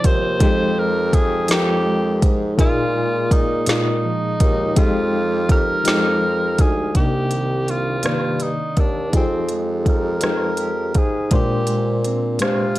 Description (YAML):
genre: slow six-eight R&B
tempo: 55 BPM (dotted quarters)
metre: 6/8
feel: straight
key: F dorian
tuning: A4 = 440 Hz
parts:
  - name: breathy tenor saxophone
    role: melody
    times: 0.0-12.8 s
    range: C4 to C5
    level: -24 LUFS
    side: equal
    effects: none
  - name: mellow electric guitar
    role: second line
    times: 0.0-12.8 s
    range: Bb2 to G4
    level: -28 LUFS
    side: right 6 dB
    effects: lush chorus
  - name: FM electric piano with tremolo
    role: accompaniment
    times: 0.0-12.8 s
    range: Bb2 to D5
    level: -24 LUFS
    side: left 2 dB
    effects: none
  - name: smooth R&B drum kit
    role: drums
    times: 0.0-12.8 s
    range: hi-hat, kick drum, rim click, snare drum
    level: -19 LUFS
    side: equal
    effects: none
  - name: mellow bassoon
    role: bass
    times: 0.1-12.8 s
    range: C2 to C3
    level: -22 LUFS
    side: equal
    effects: none
room: digital ambience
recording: dry, gritty hardware recording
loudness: -16 LUFS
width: side -16 dB against mid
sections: 0.0-7.0 A section; 7.0-12.8 B section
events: none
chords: 0.4 Fm9; 2.6 Bb7sus4; 4.8 Fm9; 7.0 Cm9; 9.1 Fm9; 11.3 Bb9